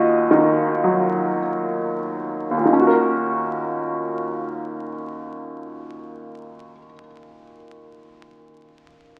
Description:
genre	classical, lyrical solo piano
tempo	29-40 BPM (dotted quarters)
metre	6/8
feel	rubato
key	Eb minor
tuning	A4 = 438 Hz
part	bright upright piano	solo	0.0-9.2 s	Eb2 to Eb5	-22 LUFS	equal	none
room	wet scoring stage reverb, RT60 1.7 s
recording	very old 78 rpm record, vinyl crackle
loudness	-21 LUFS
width	mono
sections	0.0-2.7 A section; 2.7-6.8 B section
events	slowing down 0.0-2.7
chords	0.0 Ebm; 2.7 Ebm7

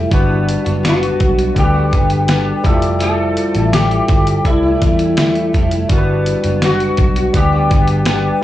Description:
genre	indie pop, bedroom pop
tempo	83 BPM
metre	4/4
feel	straight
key	G major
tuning	A4 = 445 Hz
part	flamenco guitar	accompaniment	0.0-8.4 s	F3 to G4	-22 LUFS	left 4 dB	analog chorus, vibrato effect
part	overdriven tine electric piano	accompaniment	0.0-8.4 s	G3 to F#5	-20 LUFS	right 1 dB	none
part	vintage muted fingered electric bass	bass	0.0-8.3 s	F1 to E2	-17 LUFS	equal	transformer saturation
part	dusty soul sampler-style drum kit	drums	0.1-8.2 s	hi-hat, kick drum, snare drum	-16 LUFS	equal	none
part	electric guitar through a small old amp	melody	0.9-8.4 s	E4 to A4	-18 LUFS	left 1 dB	ensemble chorus, analog delay
room	light reverb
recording	dry, gritty hardware recording, cassette tape, studio reverb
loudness	-12 LUFS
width	side -14 dB against mid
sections	0.0-8.4 A section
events	none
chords	0.1 Gmaj7; 2.6 Fmaj9; 5.9 Gmaj7

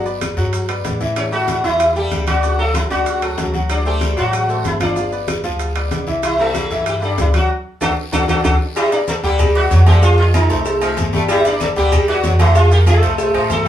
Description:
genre	latin, salsa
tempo	190 BPM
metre	4/4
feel	straight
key	G major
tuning	A4 = 441 Hz
part	sitar	melody	0.0-13.7 s	G3 to D5	-19 LUFS	equal	none
part	bright grand piano	accompaniment	0.0-13.7 s	D3 to G5	-22 LUFS	left 1 dB	none
part	upright bass	bass	0.0-13.7 s	G1 to A2	-17 LUFS	equal	none
part	bongos and cowbell	percussion	0.1-13.7 s	none	-24 LUFS	equal	none
part	congas	percussion	0.1-13.7 s	none	-24 LUFS	left 1 dB	none
part	maracas	percussion	0.1-13.7 s	none	-36 LUFS	right 5 dB	none
part	claves	percussion	0.2-13.5 s	none	-32 LUFS	left 7 dB	none
part	guiro	percussion	0.2-13.7 s	none	-34 LUFS	left 4 dB	none
part	timbales and agogo bells	percussion	0.2-13.7 s	none	-27 LUFS	right 5 dB	none
part	edgy saxophone section	second line	8.8-13.7 s	D3 to A3	-23 LUFS	left 1 dB	none
room	wet studio reverb, RT60 0.6 s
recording	band playing live in one room, small room ambience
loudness	-14 LUFS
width	side -11 dB against mid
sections	0.0-8.8 A section; 8.8-13.7 B section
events	band accent 7.5-8.8; drum fill 8.3-8.8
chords	0.0 Gmaj7; 1.2 A7(no3); 2.4 D; 3.7 D7; 5.0 G7; 6.2 C6; 7.5 D; 8.8 Gmaj7; 10.0 F7; 11.3 Gmaj7; 12.6 F7

